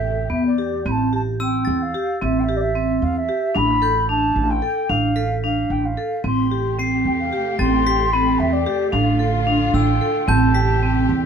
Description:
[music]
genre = contemporary instrumental, chamber music in an uneven meter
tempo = 222 BPM (eighths)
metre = 5/8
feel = straight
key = A minor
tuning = A4 = 440 Hz
[part]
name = mellow wooden flute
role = melody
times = 0.0-11.1 s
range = D5 to C6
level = -23 LUFS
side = equal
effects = none
[part]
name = rich studio string section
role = sustained chords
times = 0.0-0.8, 6.2-11.3 s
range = C3 to G4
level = -28 LUFS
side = left 2 dB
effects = none
[part]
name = vibraphone with hard mallets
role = arpeggios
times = 0.0-11.2 s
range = B3 to A4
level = -21 LUFS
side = equal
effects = none
[part]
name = upright bass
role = bass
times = 0.0-11.3 s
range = A1 to E2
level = -22 LUFS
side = right 3 dB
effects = none
[part]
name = glockenspiel with brass mallets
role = texture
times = 0.0-11.3 s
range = E6 to C7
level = -31 LUFS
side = left 3 dB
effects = none
[sound]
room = moderate studio reverb, RT60 0.8 s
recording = none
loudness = -17 LUFS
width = side -7 dB against mid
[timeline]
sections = 0.9-11.3 A section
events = none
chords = 0.0 Am9; 0.9 Am7; 3.6 Dm/A; 6.2 Am7; 8.9 Dm/A; 10.3 Am9

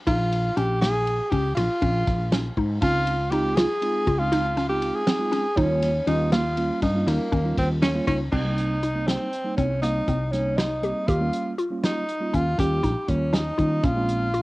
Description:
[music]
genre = progressive instrumental, band music in an uneven meter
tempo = 240 BPM (eighths)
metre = 11/8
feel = straight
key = unclear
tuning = A4 = 438 Hz
[part]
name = breathy tenor saxophone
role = melody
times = 0.1-14.4 s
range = Bb3 to Ab4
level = -26 LUFS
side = equal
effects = cassette tape
[part]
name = hollow square pluck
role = arpeggios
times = 0.1-14.4 s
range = Bb3 to G4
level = -28 LUFS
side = equal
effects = chorus, cassette tape
[part]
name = woody fretless electric bass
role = bass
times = 0.1-14.4 s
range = Bb1 to Eb3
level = -26 LUFS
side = equal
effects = none
[part]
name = warm soul drum kit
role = drums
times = 0.1-14.4 s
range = crash cymbal, hi-hat, kick drum, ride cymbal, snare drum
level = -28 LUFS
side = equal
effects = cassette tape
[part]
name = mellow tine electric piano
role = accompaniment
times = 2.8-14.3 s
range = G3 to F4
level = -29 LUFS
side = right 2 dB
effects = cassette tape
[sound]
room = light reverb, small room ambience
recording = home recording on cassette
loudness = -21 LUFS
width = side -20 dB against mid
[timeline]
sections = 0.0-8.3 A section; 8.3-14.4 B section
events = none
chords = 0.1 Bbm; 2.8 Dbmaj7; 5.6 Eb7; 8.3 Cm7; 11.1 Eb7; 13.8 Bbm7

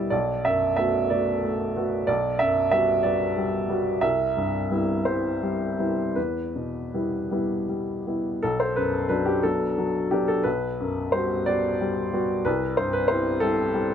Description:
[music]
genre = neoclassical minimalist piano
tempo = 52-63 BPM (dotted quarters)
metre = 6/8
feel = rubato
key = B phrygian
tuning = A4 = 439 Hz
[part]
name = warm upright piano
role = solo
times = 0.0-13.9 s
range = B1 to E5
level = -22 LUFS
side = equal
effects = none
[sound]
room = light reverb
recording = none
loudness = -22 LUFS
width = side -8 dB against mid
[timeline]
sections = 0.0-8.4 A section; 8.4-13.9 A section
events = none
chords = 0.1 Bm7; 2.1 Gmaj7/B; 4.0 Cmaj7; 6.2 Em; 8.4 Bm7; 10.4 Gmaj7/B; 12.5 Cmaj7

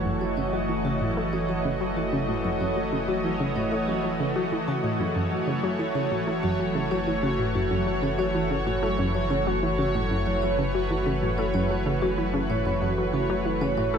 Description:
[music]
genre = ambient, sequencer-driven space music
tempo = 94 BPM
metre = 4/4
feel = straight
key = F# dorian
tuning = A4 = 442 Hz
[part]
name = lush unison pad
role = sustained chords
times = 0.0-14.0 s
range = E3 to D#5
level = -27 LUFS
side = equal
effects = chorus
[part]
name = vibraphone with medium mallets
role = arpeggios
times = 0.0-14.0 s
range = F#3 to F#5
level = -31 LUFS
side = right 2 dB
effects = auto-pan, tape echo
[part]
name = round analog bass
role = bass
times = 0.0-14.0 s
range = F#1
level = -34 LUFS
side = equal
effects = none
[part]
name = bubbling stepped-filter texture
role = texture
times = 0.0-14.0 s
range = C#5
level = -36 LUFS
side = right 2 dB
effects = chorus, built-in reverb
[part]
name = analog pluck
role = riff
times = 0.1-14.0 s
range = F#2 to A3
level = -28 LUFS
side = equal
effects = chorus, cassette tape, tape echo
[sound]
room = wet shimmer reverb, RT60 9.1 s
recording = none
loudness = -23 LUFS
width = side -7 dB against mid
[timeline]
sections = 0.0-14.0 A section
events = filter sweep on synth arpeggio sound 0.0-14.0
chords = 0.0 F#m7

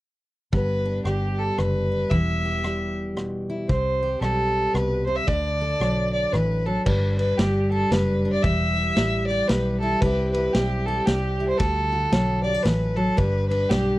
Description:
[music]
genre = honky-tonk and classic country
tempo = 114 BPM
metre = 3/4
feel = swing 62% on 8ths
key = G major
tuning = A4 = 439 Hz
[part]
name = dark fiddle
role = melody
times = 0.5-14.0 s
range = G4 to E5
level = -25 LUFS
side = equal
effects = none
[part]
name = picked steel-string acoustic guitar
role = accompaniment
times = 0.5-14.0 s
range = G2 to A4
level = -26 LUFS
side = equal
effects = none
[part]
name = vintage muted fingered electric bass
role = bass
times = 0.5-14.0 s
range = E1 to D2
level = -26 LUFS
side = equal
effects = none
[part]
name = vintage drum kit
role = drums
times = 0.5-13.9 s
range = crash cymbal, kick drum, ride cymbal, rim click, snare drum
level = -25 LUFS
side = equal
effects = none
[sound]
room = light reverb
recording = dry, close 1970s-style studio recording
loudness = -20 LUFS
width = side -17 dB against mid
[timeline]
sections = 0.5-6.9 A section; 6.9-14.0 B section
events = none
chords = 0.5 G; 2.1 Em; 3.7 C5; 5.3 D; 6.9 G5; 8.4 Em; 10.0 C; 11.6 D; 13.2 G

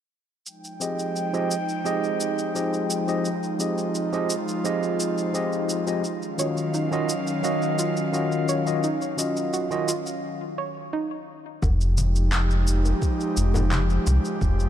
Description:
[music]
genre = sunset chillout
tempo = 86 BPM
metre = 4/4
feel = straight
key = unclear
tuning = A4 = 440 Hz
[part]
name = airy breathy pad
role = sustained chords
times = 0.6-14.7 s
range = Eb3 to G5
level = -28 LUFS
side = equal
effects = chorus
[part]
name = electronic shaker and handclaps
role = drums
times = 0.5-14.7 s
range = none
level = -32 LUFS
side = equal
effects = none
[part]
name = overdriven tine electric piano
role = accompaniment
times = 0.8-9.9 s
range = Eb3 to F5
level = -26 LUFS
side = moving between left 5 dB and right 7 dB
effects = auto-pan, low-pass filter, ping-pong delay
[part]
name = soft round pluck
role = arpeggios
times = 6.4-11.2 s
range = Eb4 to Db5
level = -32 LUFS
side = right 3 dB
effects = chorus, ping-pong delay
[part]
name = round analog bass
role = bass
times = 11.6-14.7 s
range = F1 to C2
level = -21 LUFS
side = equal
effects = none
[part]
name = electronic kick drum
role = drums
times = 11.6-14.6 s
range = none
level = -24 LUFS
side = equal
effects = none
[part]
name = bongos and congas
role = percussion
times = 11.6-14.2 s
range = none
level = -33 LUFS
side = left 2 dB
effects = none
[sound]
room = moderate lush hall reverb, RT60 3.1 s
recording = dark, warm production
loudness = -22 LUFS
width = side -10 dB against mid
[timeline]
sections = 0.5-11.6 A section; 11.6-14.7 B section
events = break 10.2-11.6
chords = 0.5 Fm9; 6.0 Ebm9; 11.6 Fm9

